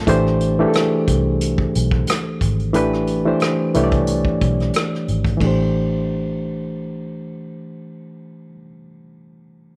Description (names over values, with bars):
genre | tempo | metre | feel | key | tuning
R&B, neo-soul | 90 BPM | 4/4 | swing 53% on 16ths | unclear | A4 = 440 Hz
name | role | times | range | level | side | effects
barky reed electric piano | accompaniment | 0.0-9.8 s | E3 to D5 | -22 LUFS | equal | overdrive
vintage muted fingered electric bass | bass | 0.1-8.5 s | G#1 to C2 | -24 LUFS | equal | none
unplugged drum kit | drums | 0.1-5.6 s | hi-hat, kick drum, ride cymbal, rim click | -26 LUFS | equal | none
room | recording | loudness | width
studio reverb | none | -19 LUFS | mono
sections
0.1-5.4 A section; 5.4-8.1 B section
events
none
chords
0.1 Am11; 5.4 Am7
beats
| 0.07 0.74 1.40 2.07 | 2.74 3.40 4.07 4.74 | 5.40 6.07 6.74 7.40